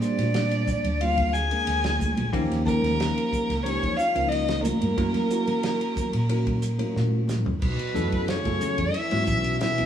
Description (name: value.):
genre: electric jazz fusion.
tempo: 91 BPM.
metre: 4/4.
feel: straight.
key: unclear.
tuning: A4 = 440 Hz.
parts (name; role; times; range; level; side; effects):
rich violin; melody; 0.0-9.9 s; Bb4 to Ab5; -27 LUFS; left 2 dB; none.
breathy trombone; second line; 0.0-9.9 s; B2 to Ab4; -32 LUFS; right 2 dB; none.
bell-like tine electric piano; accompaniment; 0.0-9.9 s; F3 to Bb4; -29 LUFS; left 1 dB; medium stereo tremolo, phaser.
damped 70s drum kit; drums; 0.0-9.9 s; crash cymbal, hi-hat, kick drum, ride cymbal, snare drum, toms; -32 LUFS; equal; none.
mellow fretless electric bass; bass; 0.2-9.9 s; Bb1 to Gb3; -27 LUFS; equal; none.
congas; percussion; 0.2-9.3 s; none; -33 LUFS; right 2 dB; none.
room: wet stone room reverb, RT60 1.3 s.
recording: band playing live in one room, small room ambience.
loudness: -22 LUFS.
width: side -9 dB against mid.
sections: 0.0-7.6 A section; 7.6-9.9 B section.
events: drum fill 6.8-7.6.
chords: 0.0 Bb13; 2.3 Eb9; 5.0 Gb7; 7.6 B9sus4.